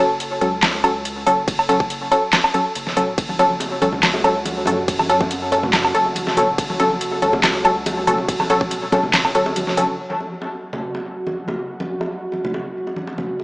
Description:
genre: deep dubstep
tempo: 141 BPM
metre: 4/4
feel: half-time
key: F# phrygian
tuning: A4 = 440 Hz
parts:
  - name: filtered dub chord stab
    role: stabs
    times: 0.0-9.9 s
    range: F#3 to A4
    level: -18 LUFS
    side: equal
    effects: chorus, dub echo
  - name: soft dub sub bass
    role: bass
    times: 0.0-9.8 s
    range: E1 to F#2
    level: -34 LUFS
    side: equal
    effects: none
  - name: dubstep drum kit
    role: drums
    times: 0.2-9.9 s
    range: crash cymbal, handclaps, hi-hat, snare drum, woodblock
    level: -21 LUFS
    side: equal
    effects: overdrive
  - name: electronic kick drum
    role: drums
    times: 1.5-9.0 s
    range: none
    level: -23 LUFS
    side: equal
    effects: overdrive
  - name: dark analog pad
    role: sustained chords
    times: 3.3-13.4 s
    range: F#4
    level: -27 LUFS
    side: right 1 dB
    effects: chorus
  - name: congas and bongos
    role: percussion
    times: 3.3-13.4 s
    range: none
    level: -27 LUFS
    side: equal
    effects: dub echo
room: wet spring reverb, RT60 1.4 s, digital ambience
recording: small speaker sound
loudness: -17 LUFS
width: side -25 dB against mid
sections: 0.0-10.0 A section; 10.0-13.4 B section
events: drop 0.0-10.0; break 9.6-10.0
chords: 0.0 F#m; 10.0 N.C.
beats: 0.20 0.63 1.05 | 1.48 1.90 2.33 2.75 | 3.18 3.60 4.03 4.46 | 4.88 5.31 5.73 6.16 | 6.58 7.01 7.43 7.86 | 8.29 8.71 9.14 9.56 | 9.99 10.41 10.84 11.26 | 11.69 12.12 12.54 12.97 | 13.39

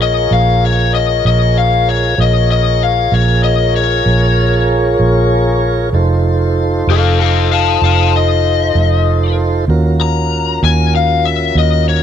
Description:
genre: blues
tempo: 64 BPM (dotted quarters)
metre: 12/8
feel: straight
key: Bb minor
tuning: A4 = 441 Hz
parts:
  - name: lead guitar through a small cranked amp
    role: melody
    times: 0.0-12.0 s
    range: A4 to Bb5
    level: -15 LUFS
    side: left 11 dB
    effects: overdrive
  - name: mellow tonewheel organ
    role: sustained chords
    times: 0.0-12.0 s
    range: Db4 to Db5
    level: -17 LUFS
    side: right 2 dB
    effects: slow rotary speaker
  - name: vintage muted fingered electric bass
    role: bass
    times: 0.0-12.0 s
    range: F1 to Eb2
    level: -13 LUFS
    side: right 2 dB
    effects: none
room: light reverb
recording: none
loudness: -10 LUFS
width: side -9 dB against mid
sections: 0.0-12.0 A section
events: none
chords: 0.0 Bbm7; 5.9 F7; 9.7 Ebm9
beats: 0.31 1.25 | 2.19 3.13 4.06 5.00 | 5.94 6.88 7.81 8.75 | 9.69 10.62 11.56

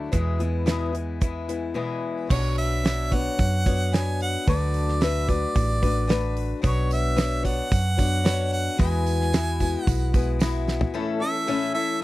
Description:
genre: folk rock and heartland rock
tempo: 111 BPM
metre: 4/4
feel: straight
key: unclear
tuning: A4 = 441 Hz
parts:
  - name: picked old ladder-braced acoustic guitar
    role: accompaniment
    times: 0.0-12.0 s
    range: E2 to C#5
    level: -28 LUFS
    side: left 5 dB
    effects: none
  - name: hollow-body short-scale fingered electric bass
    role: bass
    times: 0.0-10.8 s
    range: A1 to F#2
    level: -25 LUFS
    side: right 1 dB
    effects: none
  - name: damped 70s drum kit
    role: drums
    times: 0.1-10.9 s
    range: crash cymbal, hi-hat, kick drum, snare drum, toms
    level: -24 LUFS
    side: right 1 dB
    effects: none
  - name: clear harmonica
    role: melody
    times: 2.3-12.0 s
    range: C#5 to G#5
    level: -28 LUFS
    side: right 2 dB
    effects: none
  - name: tambourine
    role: percussion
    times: 6.6-10.7 s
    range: none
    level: -44 LUFS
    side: right 11 dB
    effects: none
  - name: tonewheel organ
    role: sustained chords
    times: 10.9-12.0 s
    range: E3 to A4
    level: -34 LUFS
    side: right 2 dB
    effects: overdrive, chorus vibrato, slow rotary speaker
room: little or no reverb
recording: dry, close 1970s-style studio recording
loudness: -21 LUFS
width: side -17 dB against mid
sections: 0.0-2.3 A section; 2.3-10.9 B section; 10.9-12.0 C section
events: drum fill 10.7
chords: 0.1 E; 2.3 Bmadd9; 4.5 D6; 6.6 Bmadd9; 8.8 Eadd9; 10.9 A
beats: | 0.14 0.68 1.22 1.77 | 2.31 2.85 3.40 3.94 | 4.48 5.02 5.56 6.10 | 6.64 7.18 7.72 8.26 | 8.80 9.34 9.87 10.41 | 10.95 11.48 12.02

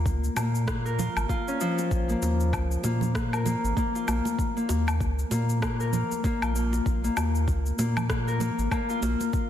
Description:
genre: organic downtempo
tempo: 97 BPM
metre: 4/4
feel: swing 58% on 16ths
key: Bb minor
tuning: A4 = 439 Hz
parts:
  - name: Celtic harp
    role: arpeggios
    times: 0.0-9.5 s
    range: F3 to Bb4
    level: -28 LUFS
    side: left 2 dB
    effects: ping-pong delay
  - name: warm sub bass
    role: bass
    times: 0.0-9.2 s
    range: Ab1 to Bb2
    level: -27 LUFS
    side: equal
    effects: none
  - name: electronic cabasa, woodblock and rim click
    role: drums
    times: 0.1-9.5 s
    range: none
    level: -34 LUFS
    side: left 2 dB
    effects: overdrive, studio reverb
  - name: electronic kick drum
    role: drums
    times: 0.1-9.5 s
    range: none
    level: -29 LUFS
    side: equal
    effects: overdrive, studio reverb
  - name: bongos and congas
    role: percussion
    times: 0.4-9.3 s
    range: none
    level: -37 LUFS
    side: right 6 dB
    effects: none
room: light reverb, studio reverb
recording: dense, heavily limited modern master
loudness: -24 LUFS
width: side -10 dB against mid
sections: 0.0-9.5 A section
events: none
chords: 0.0 Bbm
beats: 0.06 0.67 1.29 | 1.91 2.53 3.15 3.77 | 4.38 5.00 5.62 6.24 | 6.86 7.48 8.10 8.71 | 9.33

